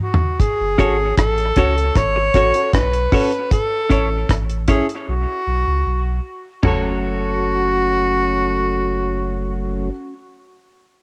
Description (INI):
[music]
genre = dub reggae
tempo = 77 BPM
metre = 4/4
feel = straight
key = F# minor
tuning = A4 = 440 Hz
[part]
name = breathy tenor saxophone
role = melody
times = 0.0-9.9 s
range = F#4 to C#5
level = -23 LUFS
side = equal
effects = dub echo, plate reverb
[part]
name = deep reggae drum kit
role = drums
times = 0.1-6.8 s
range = china cymbal, hi-hat, kick drum, rim click, toms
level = -20 LUFS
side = equal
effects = cassette tape
[part]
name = warm sub bass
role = bass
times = 0.6-9.9 s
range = F#1 to C#2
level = -25 LUFS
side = equal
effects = none
[part]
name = clean electric guitar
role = accompaniment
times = 0.8-10.2 s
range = C#4 to C#5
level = -26 LUFS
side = equal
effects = cassette tape, dub echo, plate reverb
[part]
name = warm upright piano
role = stabs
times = 0.8-9.9 s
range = A3 to C#5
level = -29 LUFS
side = equal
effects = cassette tape, dub echo, plate reverb
[part]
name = mellow tonewheel organ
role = accompaniment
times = 6.6-9.9 s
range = F#3 to C#4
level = -29 LUFS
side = equal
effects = slow rotary speaker, cassette tape
[sound]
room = light reverb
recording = home recording on cassette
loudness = -18 LUFS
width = mono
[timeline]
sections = 0.4-6.6 A section; 6.6-9.8 B section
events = break 0.0-0.4, 5.1-6.6; drum fill 0.0-0.4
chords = 0.4 F#m; 3.5 A; 5.1 B5; 6.6 F#m